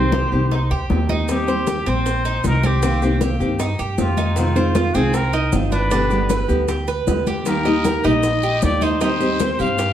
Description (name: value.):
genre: latin, Cuban son and guajira.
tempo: 155 BPM.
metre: 4/4.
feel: straight.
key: C minor.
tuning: A4 = 440 Hz.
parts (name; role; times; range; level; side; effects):
breathy trumpet; melody; 0.0-9.9 s; F4 to F5; -23 LUFS; left 2 dB; plate reverb.
nylon-string guitar; accompaniment; 0.0-9.8 s; B2 to G4; -22 LUFS; left 1 dB; none.
Cuban tres; arpeggios; 0.0-9.9 s; C4 to Eb5; -24 LUFS; right 4 dB; none.
upright bass; bass; 0.0-9.9 s; G1 to G2; -22 LUFS; equal; none.
bongos; percussion; 0.1-9.9 s; none; -30 LUFS; left 3 dB; none.
congas; percussion; 0.1-9.9 s; none; -27 LUFS; left 2 dB; none.
maracas; percussion; 1.3-9.9 s; none; -38 LUFS; right 6 dB; none.
guiro; percussion; 7.5-9.9 s; none; -35 LUFS; right 6 dB; none.
room: wet studio reverb, RT60 0.8 s.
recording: heard from further back in the room.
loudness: -16 LUFS.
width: side -10 dB against mid.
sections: 0.0-9.9 A section.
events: none.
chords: 0.0 Cm; 1.3 Eb6; 2.8 Cm7; 4.4 Fm7; 5.9 G; 7.5 Eb; 9.0 Cm/Eb.